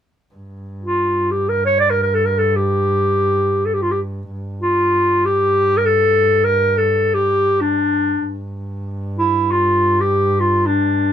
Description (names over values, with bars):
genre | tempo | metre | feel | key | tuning
Turkish makam ensemble | free time | none | none | G makam nikriz | A4 = 442 Hz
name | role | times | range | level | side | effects
rich double bass | drone | 0.3-11.1 s | G2 | -23 LUFS | right 1 dB | none
warm clarinet | melody | 0.8-11.1 s | D4 to D5 | -15 LUFS | equal | none
room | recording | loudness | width
light reverb | close, detailed microphones | -14 LUFS | side -9 dB against mid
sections
0.3-11.1 A section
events
none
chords
none